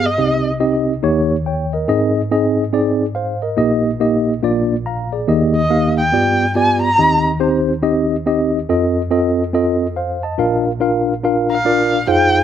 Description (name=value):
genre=gospel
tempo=141 BPM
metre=4/4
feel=swing 62% on 8ths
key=Eb major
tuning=A4 = 443 Hz
part: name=dark erhu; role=melody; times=0.0-0.5, 5.6-7.2, 11.5-12.4 s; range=Eb5 to Bb5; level=-16 LUFS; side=equal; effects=slapback echo
part: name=mellow tine electric piano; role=accompaniment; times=0.0-12.4 s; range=Bb1 to Bb5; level=-15 LUFS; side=equal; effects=medium stereo tremolo, slapback echo
room=light reverb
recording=recorded outdoors, with no room sound, faint mains hum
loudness=-14 LUFS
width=side -9 dB against mid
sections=0.0-12.1 A section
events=tine electric piano fill 11.2-12.1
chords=0.2 Cm; 1.0 Eb7; 1.9 Ab; 3.6 Eb/Bb; 4.4 Bb; 5.3 Eb; 6.1 G7; 7.0 Cm/Eb; 8.7 F7; 10.4 Bb